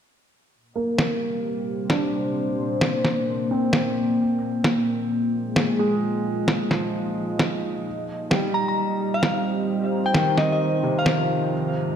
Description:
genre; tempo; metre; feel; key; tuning
future garage; 131 BPM; 4/4; swing 64% on 16ths; C minor; A4 = 442 Hz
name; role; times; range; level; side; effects
dark analog pad; sustained chords; 0.5-12.0 s; Ab3 to Eb5; -25 LUFS; left 1 dB; chorus
felt-muted upright piano; accompaniment; 0.8-12.0 s; C3 to D4; -26 LUFS; right 2 dB; low-pass filter, dub echo
electronic snare drum; drums; 1.0-11.2 s; none; -24 LUFS; equal; studio reverb
glassy synth bell; melody; 8.5-11.3 s; Eb5 to Bb5; -25 LUFS; left 2 dB; chorus, vintage 12-bit sampler grit, dub echo
room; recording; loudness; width
wet scoring stage reverb, RT60 1.9 s; dark, warm production; -21 LUFS; side -8 dB against mid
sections
0.5-12.0 A section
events
filter sweep on felt piano 0.5-12.0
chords
0.5 C5; 4.2 Bb7sus4; 7.9 Cm7

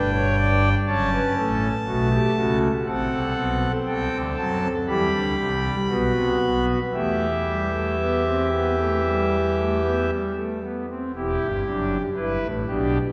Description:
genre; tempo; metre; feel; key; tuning
classical, baroque-style 4-part fugue for pipe organ; 56-61 BPM; 4/4; straight; E minor; A4 = 439 Hz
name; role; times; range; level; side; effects
pipe organ, foundations; solo; 0.0-13.0 s; E1 to B5; -23 LUFS; equal; none
room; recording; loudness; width
wet church reverb, RT60 3.0 s; heard from further back in the room; -23 LUFS; mono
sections
0.0-11.1 A section; 11.1-13.1 B section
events
none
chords
0.0 G; 0.9 F#m; 2.9 F#dim/A; 4.9 Em; 5.9 B5; 6.9 Em

